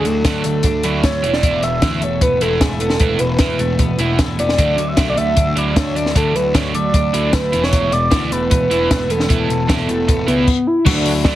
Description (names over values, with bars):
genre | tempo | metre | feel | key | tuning
indie rock | 152 BPM | 4/4 | straight | unclear | A4 = 444 Hz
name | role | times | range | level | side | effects
overdriven synth lead | melody | 0.0-11.4 s | B3 to E5 | -19 LUFS | equal | chorus, slapback echo
crunchy overdriven guitar | riff | 0.0-11.4 s | E3 to E4 | -23 LUFS | right 6 dB | wide subtle chorus, slapback echo
twelve-string electric guitar | riff | 0.0-11.4 s | E2 to E4 | -24 LUFS | left 6 dB | none
fuzz picked electric bass | bass | 0.0-11.4 s | E1 to D2 | -22 LUFS | equal | overdrive
compact cocktail drum kit | drums | 0.1-11.3 s | crash cymbal, hi-hat, kick drum, snare drum | -18 LUFS | equal | none
barky tine electric piano | second line | 10.9-11.4 s | F#4 | -27 LUFS | left 6 dB | medium stereo tremolo
room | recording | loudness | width
light reverb | heavily compressed radio sound, multiband compression | -14 LUFS | side -14 dB against mid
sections
0.0-10.9 A section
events
none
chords
0.0 Dadd9; 1.2 Asus2/E; 4.6 Dadd9; 7.5 Asus2/E